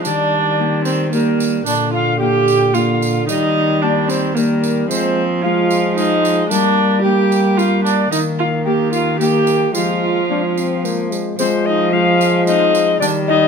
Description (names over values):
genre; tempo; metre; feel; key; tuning
classical, renaissance-style consort dance; 111 BPM; 3/4; straight; F dorian; A4 = 440 Hz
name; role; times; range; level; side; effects
mellow alto recorder; melody; 0.0-13.5 s; Bb4 to G5; -21 LUFS; left 7 dB; none
warm viola; second line; 0.0-13.5 s; Bb3 to G4; -18 LUFS; right 6 dB; none
Celtic harp; accompaniment; 0.0-13.5 s; Bb2 to Ab4; -24 LUFS; left 8 dB; none
warm trombone; accompaniment; 0.0-13.5 s; D3 to D4; -22 LUFS; left 4 dB; none
dark cello; bass; 0.0-13.5 s; Bb2 to G3; -20 LUFS; right 2 dB; none
tambourine; percussion; 0.0-13.3 s; none; -28 LUFS; right 6 dB; none
room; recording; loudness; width
moderate stone room reverb, RT60 1.3 s; none; -13 LUFS; side -6 dB against mid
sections
0.0-11.4 A section; 11.4-13.5 A section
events
none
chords
0.0 Eb; 1.7 Bb; 3.3 Eb; 4.9 Fm; 6.5 Gm; 8.1 Eb; 9.7 Fm